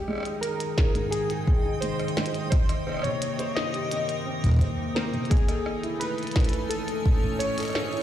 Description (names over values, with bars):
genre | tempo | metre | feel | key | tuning
IDM | 86 BPM | 4/4 | straight | Ab major | A4 = 441 Hz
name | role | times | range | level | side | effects
warbly lo-fi synth keys | melody | 0.0-8.0 s | G4 to Eb5 | -32 LUFS | equal | chorus, digital delay
icy glass pad | sustained chords | 0.0-8.0 s | C3 to G#5 | -33 LUFS | left 1 dB | chorus, built-in reverb
pulsing gated texture | texture | 0.3-8.0 s | Eb4 to Eb6 | -39 LUFS | equal | chorus, built-in reverb, sidechain pumping
felt-muted upright piano | arpeggios | 0.1-8.0 s | Ab2 to C5 | -32 LUFS | right 1 dB | ping-pong delay
glitchy drum kit | drums | 0.1-8.0 s | hi-hat, rim click, snare drum | -33 LUFS | left 1 dB | none
electronic kick drum | drums | 0.8-7.2 s | none | -22 LUFS | equal | none
room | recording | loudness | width
light reverb | played on a big sound system in a bare room, stone room reverb | -24 LUFS | side -11 dB against mid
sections
0.0-8.0 A section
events
none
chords
0.0 Abmaj7; 2.5 Cm7; 5.3 Amaj7